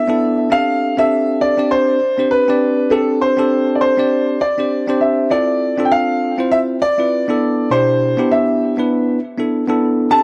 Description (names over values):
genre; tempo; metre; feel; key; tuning
chillout; 100 BPM; 4/4; swing 57% on 16ths; unclear; A4 = 440 Hz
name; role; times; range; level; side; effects
warm concert grand piano; melody; 0.0-10.2 s; A4 to A5; -18 LUFS; equal; tape echo
bell-like tine electric piano; accompaniment; 0.0-10.2 s; B2 to D5; -19 LUFS; equal; none
room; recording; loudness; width
studio reverb; dry, gritty hardware recording; -16 LUFS; mono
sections
0.0-10.2 A section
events
none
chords
0.0 Cmaj9 (rootless); 0.5 Csus2; 5.3 Dm9; 7.4 Cmaj9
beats
| 0.52 1.12 1.72 2.32 | 2.92 3.52 4.12 4.72 | 5.32 5.92 6.52 7.12 | 7.72 8.32 8.92 9.52 | 10.12